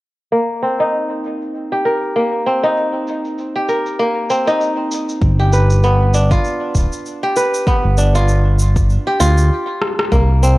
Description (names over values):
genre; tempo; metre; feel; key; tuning
organic downtempo; 98 BPM; 4/4; swing 57% on 16ths; C minor; A4 = 440 Hz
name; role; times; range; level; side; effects
kora; arpeggios; 0.3-10.6 s; Bb3 to B4; -17 LUFS; equal; low-pass filter, tape echo
electronic cabasa and rim click; drums; 0.3-10.6 s; none; -24 LUFS; left 1 dB; overdrive, low-pass filter on perc, low-pass filter on snare, low-pass filter on room
smooth synth bass; bass; 5.2-10.6 s; D1 to D2; -12 LUFS; equal; sidechain pumping
electronic kick drum; drums; 5.2-10.3 s; none; -17 LUFS; equal; overdrive
room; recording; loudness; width
digital ambience; dry, gritty hardware recording, cassette tape; -14 LUFS; side -19 dB against mid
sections
0.3-10.1 A section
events
filter sweep on kora 0.3-10.1; stop 9.5-10.1; drum fill 9.8-10.1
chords
0.3 Cm7; 5.2 G7